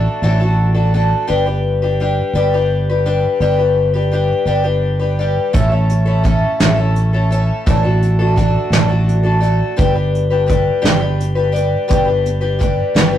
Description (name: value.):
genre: folk rock and heartland rock.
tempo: 57 BPM (dotted quarters).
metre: 6/8.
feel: straight.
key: unclear.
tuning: A4 = 439 Hz.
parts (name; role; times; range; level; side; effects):
picked twelve-string acoustic guitar; accompaniment; 0.0-13.2 s; A2 to B4; -17 LUFS; left 2 dB; none.
fingered electric bass; bass; 0.0-13.2 s; G1 to A1; -16 LUFS; equal; none.
soft brush drum kit; drums; 5.5-13.1 s; hi-hat, kick drum, snare drum; -17 LUFS; right 1 dB; none.
room: light reverb.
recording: rough rehearsal-room recording.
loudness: -13 LUFS.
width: side -11 dB against mid.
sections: 0.0-13.2 A section.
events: none.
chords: 0.0 Dadd9/A; 1.3 G; 5.5 A; 7.6 Dadd9/A; 9.8 G.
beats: 0.23 | 1.29 2.35 | 3.41 4.47 | 5.53 6.59 | 7.65 8.71 | 9.77 10.83 | 11.89 12.95.